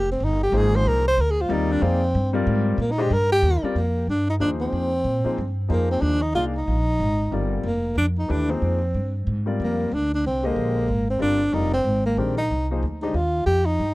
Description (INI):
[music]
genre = modal jazz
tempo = 185 BPM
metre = 3/4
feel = swing 63% on 8ths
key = F dorian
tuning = A4 = 440 Hz
[part]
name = breathy tenor saxophone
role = melody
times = 0.0-13.9 s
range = Bb3 to C5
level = -23 LUFS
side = equal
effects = tape echo
[part]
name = upright bass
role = bass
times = 0.0-13.9 s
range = F1 to Bb2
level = -23 LUFS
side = equal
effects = none
[part]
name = warm concert grand piano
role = accompaniment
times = 0.5-13.1 s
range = D3 to F5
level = -27 LUFS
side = left 3 dB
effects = none
[sound]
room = light reverb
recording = dry, close 1970s-style studio recording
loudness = -20 LUFS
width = side -19 dB against mid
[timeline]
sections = 0.0-3.8 A section; 3.8-13.9 B section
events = tenor saxophone solo 0.0-3.8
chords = 0.0 Fm11; 1.8 Ebadd9/F; 3.8 Fm11; 5.7 Ebadd9; 7.6 Fm11; 9.6 Ebadd9; 11.5 Fm11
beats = 0.21 0.53 | 0.85 1.18 1.50 | 1.82 2.14 2.46 | 2.79 3.11 3.43 | 3.75 4.08 4.40 | 4.72 5.05 5.37 | 5.70 6.02 6.35 | 6.67 6.99 7.32 | 7.64 7.97 8.29 | 8.62 8.94 9.26 | 9.59 9.91 10.23 | 10.56 10.88 11.21 | 11.53 11.85 12.18 | 12.50 12.82 13.15 | 13.47 13.79